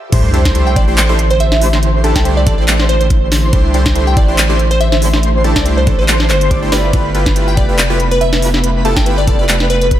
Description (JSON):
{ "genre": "future bass", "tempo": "141 BPM", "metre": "4/4", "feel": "swing 55% on 16ths, half-time", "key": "C major", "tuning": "A4 = 441 Hz", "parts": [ { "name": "ethereal airy pad", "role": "sustained chords", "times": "0.0-10.0 s", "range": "D3 to E4", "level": "-25 LUFS", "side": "equal", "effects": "ensemble chorus, built-in reverb, sidechain pumping" }, { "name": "airy dreamy lead", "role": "arpeggios", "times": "0.1-10.0 s", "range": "A4 to D5", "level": "-22 LUFS", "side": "equal", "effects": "chorus, sidechain pumping, tape echo" }, { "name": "supersaw stab", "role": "riff", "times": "0.1-10.0 s", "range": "A3 to D5", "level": "-20 LUFS", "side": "right 1 dB", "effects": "sidechain pumping, tape echo" }, { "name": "saturated sub bass", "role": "bass", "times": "0.1-10.0 s", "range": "F1 to C2", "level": "-14 LUFS", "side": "equal", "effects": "sidechain pumping" }, { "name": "electronic kick drum", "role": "drums", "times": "0.1-10.0 s", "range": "none", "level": "-14 LUFS", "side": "equal", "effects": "small room ambience" }, { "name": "trap drum kit", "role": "drums", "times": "0.1-10.0 s", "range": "crash cymbal, handclaps, hi-hat, snare drum", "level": "-18 LUFS", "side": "equal", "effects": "high-pass filter on hats, small room ambience, high-pass filter on snare, high-pass filter on cymbals" }, { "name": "sub drop", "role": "sound effects", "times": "0.1-1.8 s", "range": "none", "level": "-21 LUFS", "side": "equal", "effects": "none" }, { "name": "glassy wavetable pluck", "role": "melody", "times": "0.7-9.9 s", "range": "B4 to G5", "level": "-19 LUFS", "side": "right 1 dB", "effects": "chorus, sidechain pumping, analog delay" } ], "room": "light reverb", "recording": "high-pass filter", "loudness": "-10 LUFS", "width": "side -12 dB against mid", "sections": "0.1-10.0 A section", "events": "drop 0.1-10.0; impact 0.1-1.8", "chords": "0.1 C69; 6.7 G13", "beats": "| 0.13 0.55 0.98 1.40 | 1.83 2.25 2.68 3.10 | 3.53 3.96 4.38 4.81 | 5.23 5.66 6.08 6.51 | 6.93 7.36 7.79 8.21 | 8.64 9.06 9.49 9.91" }